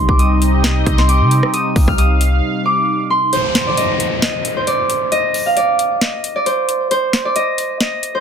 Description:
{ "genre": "hip hop, trap", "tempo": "134 BPM", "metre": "4/4", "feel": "half-time", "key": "C minor", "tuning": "A4 = 440 Hz", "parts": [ { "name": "Celtic harp", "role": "melody", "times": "0.0-8.2 s", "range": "C5 to F6", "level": "-17 LUFS", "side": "right 1 dB", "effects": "digital delay" }, { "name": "warbly lo-fi synth keys", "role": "accompaniment", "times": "0.0-3.3 s", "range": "C3 to Eb4", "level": "-21 LUFS", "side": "left 1 dB", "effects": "chorus" }, { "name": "sweeping resonant pad", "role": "sustained chords", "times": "0.1-3.3 s", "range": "C4 to F5", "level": "-23 LUFS", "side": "right 1 dB", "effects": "chorus, phaser" }, { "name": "clean 808-style bass", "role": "bass", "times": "0.0-2.4 s", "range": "C2 to C3", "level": "-14 LUFS", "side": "equal", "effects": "none" }, { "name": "trap drum kit", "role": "drums", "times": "0.1-8.1 s", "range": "hi-hat, kick drum, rim click, snare drum", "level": "-18 LUFS", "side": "equal", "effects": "overdrive" }, { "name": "downlifter", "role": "sound effects", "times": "3.3-6.9 s", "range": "none", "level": "-24 LUFS", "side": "left 3 dB", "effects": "none" } ], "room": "light reverb", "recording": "dense, heavily limited modern master", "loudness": "-13 LUFS", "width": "side -7 dB against mid", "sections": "0.0-3.3 A section; 3.3-8.2 B section", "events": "break 2.4-3.3, 3.3-8.2", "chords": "0.0 Cm; 3.3 N.C." }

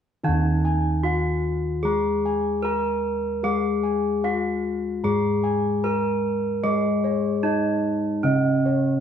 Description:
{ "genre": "gamelan", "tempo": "75 BPM", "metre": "4/4", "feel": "straight", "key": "Eb slendro", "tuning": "A4 = 441 Hz", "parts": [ { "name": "gamelan-type bronze metallophone", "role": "melody", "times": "0.2-9.0 s", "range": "Db4-40c to Bb4+20c", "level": "-24 LUFS", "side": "equal", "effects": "none" }, { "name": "gamelan-type bronze metallophone", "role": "accompaniment", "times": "0.2-9.0 s", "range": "Db3-40c to Ab3-20c", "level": "-26 LUFS", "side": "left 2 dB", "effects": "none" }, { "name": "gamelan-type bossed gongs", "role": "arpeggios", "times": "0.2-9.0 s", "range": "Db5-40c to Bb5+20c", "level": "-29 LUFS", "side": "equal", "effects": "none" }, { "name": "gamelan-type bossed gongs", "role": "bass", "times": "0.2-9.0 s", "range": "Eb2 to Ab4-20c", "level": "-30 LUFS", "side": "right 1 dB", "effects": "none" } ], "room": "wet stone room reverb, RT60 1.4 s", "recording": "band playing live in one room", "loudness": "-21 LUFS", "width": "side -8 dB against mid", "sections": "0.2-9.0 A section", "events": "none", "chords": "none" }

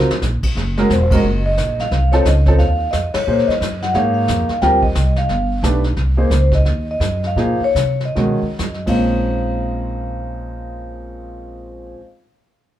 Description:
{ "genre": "jazz, small-group swing and bop", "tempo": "124-178 BPM", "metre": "4/4", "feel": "swing 62% on 8ths", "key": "Bb minor", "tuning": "A4 = 440 Hz", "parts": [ { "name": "clear grand piano", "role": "accompaniment", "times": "0.0-12.0 s", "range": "Bb2 to Db5", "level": "-20 LUFS", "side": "right 1 dB", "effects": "none" }, { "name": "upright bass", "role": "bass", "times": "0.0-11.9 s", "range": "Fb1 to C3", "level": "-18 LUFS", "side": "equal", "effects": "none" }, { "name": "vintage brush drum kit", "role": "drums", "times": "0.1-9.0 s", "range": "brushed snare drum, crash cymbal, hi-hat, kick drum, ride cymbal, snare drum", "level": "-24 LUFS", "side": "equal", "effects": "none" }, { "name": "vibraphone with soft mallets", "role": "melody", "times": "0.9-11.9 s", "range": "C5 to G5", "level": "-21 LUFS", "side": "left 1 dB", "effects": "plate reverb" } ], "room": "wet club reverb, RT60 0.5 s", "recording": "heard from further back in the room", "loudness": "-15 LUFS", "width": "side -12 dB against mid", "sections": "0.0-6.0 A section; 6.0-9.1 B section; 9.1-12.8 C section", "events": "drum fill 0.0; band accent 1.1, 3.1; slowing down 6.0-9.1", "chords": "0.0 Bbm; 0.6 Gb7; 1.9 F7; 3.3 Bbm7; 4.6 Cm11; 5.3 G7; 6.0 Bbm11/C; 6.7 Ebm; 7.4 Bbm11; 8.2 B; 8.8 Bbm11" }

